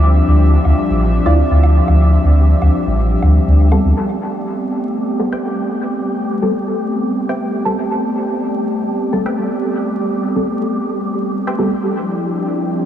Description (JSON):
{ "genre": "dub techno", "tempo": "122 BPM", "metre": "4/4", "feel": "swing 53% on 16ths", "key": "A minor", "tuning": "A4 = 440 Hz", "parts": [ { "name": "airy breathy pad", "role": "sustained chords", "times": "0.0-12.9 s", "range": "F3 to E5", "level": "-19 LUFS", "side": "left 1 dB", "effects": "chorus" }, { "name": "soft dub sub bass", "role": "bass", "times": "0.0-3.9 s", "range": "A1 to D2", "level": "-11 LUFS", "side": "equal", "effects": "tube saturation" }, { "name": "wind-like tuned noise texture", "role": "texture", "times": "0.0-12.9 s", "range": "G3 to G4", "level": "-24 LUFS", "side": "equal", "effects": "built-in reverb" }, { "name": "woodblock", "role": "percussion", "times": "0.7-3.8 s", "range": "none", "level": "-33 LUFS", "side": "right 1 dB", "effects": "none" }, { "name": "deep mellow chord stab", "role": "stabs", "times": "1.3-11.7 s", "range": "G3 to D5", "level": "-22 LUFS", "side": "equal", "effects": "chorus, phaser, dub echo" }, { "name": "filtered dub chord stab", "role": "riff", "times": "5.3-11.7 s", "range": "B4 to G5", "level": "-31 LUFS", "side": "equal", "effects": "phaser, dub echo" } ], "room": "moderate huge ambient reverb, RT60 9.1 s", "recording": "dreamy mix soaked in reverb, vinyl crackle, studio reverb, faint mains hum", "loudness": "-13 LUFS", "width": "side -10 dB against mid", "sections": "0.0-4.0 A section; 4.0-12.9 B section", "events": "filter sweep on analog synth pad 4.0-12.9", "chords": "0.0 Am9; 11.8 Dm9", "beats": "| 0.03 0.52 1.01 1.50 | 2.00 2.49 2.98 3.47 | 3.96 4.46 4.95 5.44 | 5.93 6.42 6.91 7.41 | 7.90 8.39 8.88 9.37 | 9.87 10.36 10.85 11.34 | 11.83 12.32 12.82" }